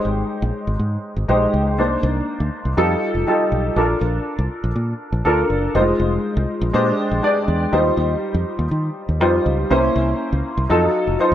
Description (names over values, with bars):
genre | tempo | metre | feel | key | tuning
polished 1980s jazz-funk pop | 121 BPM | 4/4 | straight | F dorian | A4 = 440 Hz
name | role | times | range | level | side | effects
warm baby grand piano | accompaniment | 0.0-11.3 s | Gb3 to D5 | -18 LUFS | equal | ensemble chorus
fingered electric bass | bass | 0.0-11.3 s | F1 to Eb3 | -21 LUFS | equal | none
room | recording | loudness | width
light reverb, small room ambience | none | -17 LUFS | side -11 dB against mid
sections
0.0-11.3 A section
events
none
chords
0.0 Abmaj7; 1.8 Cm9; 2.8 F9; 3.8 Bbmaj7; 5.7 Fm7; 6.7 Bb13; 7.7 Eb69; 9.7 C7b9; 10.7 F7b9